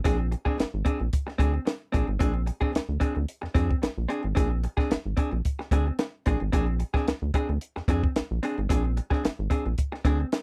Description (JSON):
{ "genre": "funk", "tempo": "111 BPM", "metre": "4/4", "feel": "straight", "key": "Bb mixolydian", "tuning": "A4 = 440 Hz", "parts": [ { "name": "vintage hollow-body jazz guitar", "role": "accompaniment", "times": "0.0-10.4 s", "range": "C4 to Ab4", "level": "-32 LUFS", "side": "equal", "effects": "none" }, { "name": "rubbery square bass", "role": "bass", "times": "0.1-10.2 s", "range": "Ab1 to F2", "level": "-29 LUFS", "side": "equal", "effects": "none" }, { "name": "compact cocktail drum kit", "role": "drums", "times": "0.1-10.4 s", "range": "hi-hat, kick drum, snare drum", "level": "-29 LUFS", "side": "equal", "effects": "none" } ], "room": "little or no reverb", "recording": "dry, close 1970s-style studio recording", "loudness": "-27 LUFS", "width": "mono", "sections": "0.0-10.4 A section", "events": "none", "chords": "0.0 Bb9", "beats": "| 0.05 0.59 1.13 1.67 | 2.21 2.75 3.29 3.83 | 4.37 4.91 5.45 5.99 | 6.53 7.07 7.62 8.16 | 8.70 9.24 9.78 10.33" }